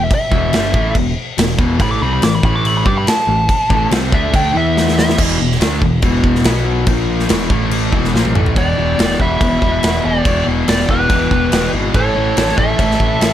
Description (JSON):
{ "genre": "hard rock", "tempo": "142 BPM", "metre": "4/4", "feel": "straight", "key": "E minor, E dorian from 8.6 s", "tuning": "A4 = 436 Hz", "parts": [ { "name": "biting lead guitar", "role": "melody", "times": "0.0-5.2, 8.6-13.3 s", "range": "B4 to D6", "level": "-18 LUFS", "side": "equal", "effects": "overdrive" }, { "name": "distorted electric guitar", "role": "riff", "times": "0.0-13.3 s", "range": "E2 to G4", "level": "-22 LUFS", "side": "left 1 dB", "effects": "distortion" }, { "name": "overdriven electric guitar", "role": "riff", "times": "0.0-13.3 s", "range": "E2 to G4", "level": "-20 LUFS", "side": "left 2 dB", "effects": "none" }, { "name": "growling picked electric bass", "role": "bass", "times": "0.0-13.3 s", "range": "E1 to G2", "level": "-19 LUFS", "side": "equal", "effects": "overdrive" }, { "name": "big rock drum kit", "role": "drums", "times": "0.1-13.3 s", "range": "crash cymbal, kick drum, snare drum, toms", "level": "-17 LUFS", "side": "equal", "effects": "none" }, { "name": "octave-fuzz lead guitar", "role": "second line", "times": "8.6-13.3 s", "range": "G4 to B4", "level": "-24 LUFS", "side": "right 3 dB", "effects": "distortion, analog delay" } ], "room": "light reverb", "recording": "none", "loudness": "-12 LUFS", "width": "side -11 dB against mid", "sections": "0.0-5.2 A section; 5.2-8.6 B section; 8.6-13.3 C section", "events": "lead electric guitar solo 0.0-5.2; drum fill 4.8-5.2, 8.1-8.6", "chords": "0.0 Em7; 1.8 A5; 4.5 E5; 6.4 B5; 6.9 A#5; 7.3 E5; 7.5 A5; 7.9 E5; 8.6 Em; 11.9 A", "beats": "| 0.11 0.53 0.96 1.38 | 1.80 2.22 2.65 3.07 | 3.49 3.91 4.34 4.76 | 5.18 5.60 6.03 6.45 | 6.87 7.29 7.72 8.14 | 8.56 8.98 9.41 9.83 | 10.25 10.68 11.10 11.52 | 11.94 12.37 12.79 13.21" }